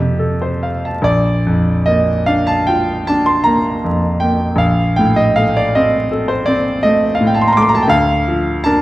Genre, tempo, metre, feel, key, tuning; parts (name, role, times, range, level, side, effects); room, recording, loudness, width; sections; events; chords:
classical, romantic nocturne for solo piano; 46-56 BPM (dotted quarters); 9/8; rubato; Bb major; A4 = 439 Hz
clear grand piano; solo; 0.0-8.8 s; Bb1 to D6; -12 LUFS; equal
wet recital hall reverb, RT60 1.6 s; vinyl crackle; -12 LUFS; side -16 dB against mid
0.0-1.0 A section; 1.0-8.8 B section
0.0 F; 1.0 Bb; 7.9 Bb/D